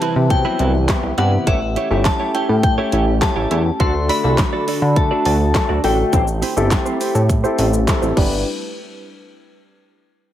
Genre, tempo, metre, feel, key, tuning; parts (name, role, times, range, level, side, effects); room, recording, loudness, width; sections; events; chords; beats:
dance-pop; 103 BPM; 4/4; straight; A4 = 439 Hz
glassy synth bell; melody; 0.0-7.8 s; E5 to C6; -23 LUFS; left 2 dB; chorus, phaser, low-pass filter, ping-pong delay
airy breathy pad; sustained chords; 0.0-8.4 s; C3 to B4; -26 LUFS; left 1 dB; chorus, sidechain pumping, low-pass filter
direct-recorded clean electric guitar; riff; 0.0-8.3 s; G3 to D5; -25 LUFS; right 7 dB; analog chorus, low-pass filter
pop drum kit; drums; 0.0-8.3 s; crash cymbal, handclaps, hi-hat, kick drum, shaker, snare drum; -20 LUFS; equal
chorused synth bass; bass; 0.2-8.4 s; G1 to D3; -18 LUFS; equal; sidechain pumping
warm concert grand piano; accompaniment; 0.3-8.4 s; F#3 to B4; -23 LUFS; left 3 dB; sidechain pumping, low-pass filter
little or no reverb; -15 LUFS; side -12 dB against mid
0.0-8.5 A section; 8.5-10.3 B section
filter sweep 0.0-8.5
0.0 Cmaj7; 1.5 A7; 3.8 D; 6.1 Am7; 8.2 G6; 8.5 N.C.
0.31 0.89 | 1.47 2.05 2.64 3.22 | 3.80 4.38 4.97 5.55 | 6.13 6.71 7.30 7.88